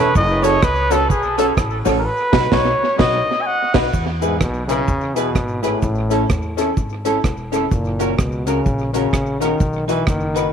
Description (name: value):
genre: ska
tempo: 127 BPM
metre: 4/4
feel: swing 60% on 8ths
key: E major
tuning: A4 = 437 Hz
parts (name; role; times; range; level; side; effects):
- breathy trumpet; melody; 0.0-3.7 s; G#4 to G#5; -19 LUFS; equal; tape echo
- archtop guitar, miked and amplified; accompaniment; 0.0-10.5 s; C#4 to B4; -24 LUFS; right 12 dB; none
- warm upright piano; stabs; 0.0-10.5 s; C#4 to D#5; -23 LUFS; left 11 dB; tube saturation
- upright bass; bass; 0.0-10.5 s; E1 to E2; -23 LUFS; equal; none
- deep reggae drum kit; drums; 0.2-10.4 s; crash cymbal, hi-hat, kick drum, rim click, snare drum; -20 LUFS; right 2 dB; tape echo
- cabasa; percussion; 0.2-10.4 s; none; -39 LUFS; left 17 dB; tape echo
- breathy trombone; melody; 4.2-10.5 s; G#2 to E3; -22 LUFS; equal; none
room: moderate spring reverb, RT60 1.7 s, studio ambience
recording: 1960s-style stereo with parts hard left and right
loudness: -16 LUFS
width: side -8 dB against mid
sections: 0.0-3.9 A section; 3.9-10.5 B section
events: trumpet solo 0.0-3.9; band accent 2.0-3.9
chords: 0.2 F#m; 2.0 B; 3.9 E; 5.8 A; 7.7 F#; 9.6 B